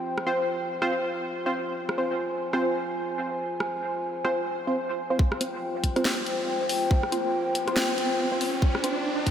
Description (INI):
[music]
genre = deep dubstep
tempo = 140 BPM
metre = 4/4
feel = swing 58% on 16ths, half-time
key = F minor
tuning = A4 = 440 Hz
[part]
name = dark analog pad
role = sustained chords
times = 0.0-9.3 s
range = F4 to Ab5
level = -29 LUFS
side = left 1 dB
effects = chorus
[part]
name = garage drum kit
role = drums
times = 0.2-9.3 s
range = hi-hat, rim click, snare drum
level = -31 LUFS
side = equal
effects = small room ambience
[part]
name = filtered dub chord stab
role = stabs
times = 0.3-9.0 s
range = C4 to C5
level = -30 LUFS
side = right 1 dB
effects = chorus, dub echo
[part]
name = electronic kick drum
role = drums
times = 5.2-9.3 s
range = none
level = -22 LUFS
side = equal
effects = small room ambience
[part]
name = riser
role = sound effects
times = 6.2-9.3 s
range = none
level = -33 LUFS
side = right 2 dB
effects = none
[sound]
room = wet huge ambient reverb, RT60 4.7 s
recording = dreamy mix soaked in reverb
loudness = -24 LUFS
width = side -9 dB against mid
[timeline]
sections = 0.0-5.2 A section; 5.2-9.3 B section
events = build-up 5.2-9.3; riser 6.2-9.3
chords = 0.0 F5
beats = | 0.05 0.48 0.91 1.34 | 1.76 2.19 2.62 3.05 | 3.48 3.91 4.34 4.76 | 5.19 5.62 6.05 6.48 | 6.91 7.34 7.76 8.19 | 8.62 9.05